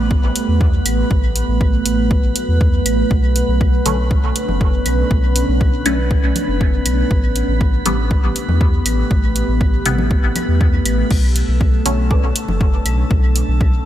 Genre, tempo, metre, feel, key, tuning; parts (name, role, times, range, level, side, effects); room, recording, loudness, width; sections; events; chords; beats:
dub techno; 120 BPM; 4/4; straight; B minor; A4 = 440 Hz
deep dark ambient pad; sustained chords; 0.0-13.9 s; A3 to B4; -22 LUFS; right 1 dB; chorus, built-in reverb, sidechain pumping
warm sub bass; bass; 0.0-13.8 s; F#1 to E2; -18 LUFS; equal; sidechain pumping
drifting glass-harmonics texture; texture; 0.0-13.9 s; A3 to B4; -28 LUFS; equal; chorus, built-in reverb, sidechain pumping
electronic kick drum; drums; 0.1-13.7 s; -16 LUFS; equal; overdrive
punchy analog drum machine; drums; 0.4-13.5 s; crash cymbal, hi-hat; -22 LUFS; right 1 dB; overdrive
claves and congas; percussion; 0.9-13.0 s; -32 LUFS; left 1 dB; sidechain pumping on perc, dub echo
filtered dub chord stab; stabs; 3.9-12.0 s; C3 to C#4; -25 LUFS; left 1 dB; phaser, sidechain pumping, dub echo
filtered dub chord stab; riff; 12.1-12.2 s; C#4 to D5; -32 LUFS; right 3 dB
light reverb; -14 LUFS; side -12 dB against mid
0.0-13.9 A section
0.0 A7sus2; 3.1 Bm9; 7.1 Am9; 11.1 Bm9
0.11 0.61 | 1.11 1.61 2.11 2.61 | 3.11 3.61 4.11 4.61 | 5.11 5.61 6.11 6.61 | 7.11 7.61 8.11 8.61 | 9.11 9.61 10.11 10.61 | 11.11 11.61 12.11 12.61 | 13.11 13.61